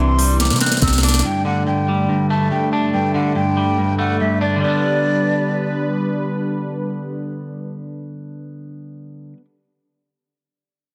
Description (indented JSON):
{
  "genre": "hip hop, trap",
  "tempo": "142 BPM",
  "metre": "4/4",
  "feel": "half-time",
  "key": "G major",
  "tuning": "A4 = 439 Hz",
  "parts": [
    { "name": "breathy mellow silver concert flute", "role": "melody", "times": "0.0-5.9 s", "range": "D5 to F#6", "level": "-25 LUFS", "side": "equal", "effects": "low-pass filter" },
    { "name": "clean electric guitar", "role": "accompaniment", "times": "0.0-9.4 s", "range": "G2 to D4", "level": "-23 LUFS", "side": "equal", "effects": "spring reverb, low-pass filter" },
    { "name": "warm analog pad", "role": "sustained chords", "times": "0.0-8.8 s", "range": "G2 to B4", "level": "-27 LUFS", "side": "equal", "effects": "chorus" },
    { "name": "warm 808-style bass", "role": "bass", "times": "0.0-1.2 s", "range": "C2 to C3", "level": "-20 LUFS", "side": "equal", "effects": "none" },
    { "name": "trap drum kit", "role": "drums", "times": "0.2-1.3 s", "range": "hi-hat, kick drum, snare drum", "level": "-20 LUFS", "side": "equal", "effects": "none" }
  ],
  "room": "light reverb",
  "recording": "dense, heavily limited modern master",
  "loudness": "-18 LUFS",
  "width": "mono",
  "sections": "0.0-1.2 A section; 1.2-4.6 B section; 4.6-8.0 C section",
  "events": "drum fill 0.4-1.2",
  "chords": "0.0 Cadd9; 1.2 Gsus2; 4.6 G",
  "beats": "0.40 0.82 | 1.24 1.67 2.09 2.51 | 2.93 3.36 3.78 4.20 | 4.62 5.05 5.47 5.89 | 6.32 6.74 7.16 7.58"
}